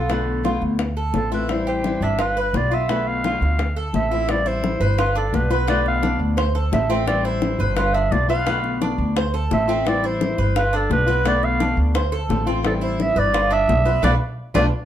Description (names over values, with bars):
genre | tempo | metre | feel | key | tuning
latin, Cuban son and guajira | 172 BPM | 4/4 | straight | A minor | A4 = 440 Hz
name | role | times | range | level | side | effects
growling clarinet | melody | 0.0-14.6 s | A4 to F5 | -23 LUFS | right 2 dB | plate reverb
flamenco guitar | accompaniment | 0.0-14.7 s | B2 to F4 | -26 LUFS | left 4 dB | none
Cuban tres | arpeggios | 0.0-14.7 s | B3 to C5 | -26 LUFS | right 2 dB | none
upright bass | bass | 0.0-14.7 s | G1 to D2 | -23 LUFS | equal | none
bongos | percussion | 0.1-14.6 s | none | -27 LUFS | left 4 dB | none
room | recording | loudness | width
moderate studio reverb, RT60 0.9 s | dark, warm production | -18 LUFS | side -11 dB against mid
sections
0.0-4.3 A section; 4.3-14.8 B section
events
drum fill 14.0-14.8; band accent 14.0-14.8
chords
0.1 Bm7b5; 0.8 Dm7; 1.5 Am7; 2.2 G7; 2.9 Bm7b5; 3.6 Dm7; 4.3 Am7; 5.0 G7; 5.7 Bm7b5; 6.4 Dm7; 7.1 Am7; 7.8 G7; 8.5 Bm7b5; 9.2 Dm7; 9.9 Am7; 10.6 G7; 11.2 Bm7b5; 11.9 Dm7; 12.6 Am7; 13.3 G7; 14.0 Bm7b5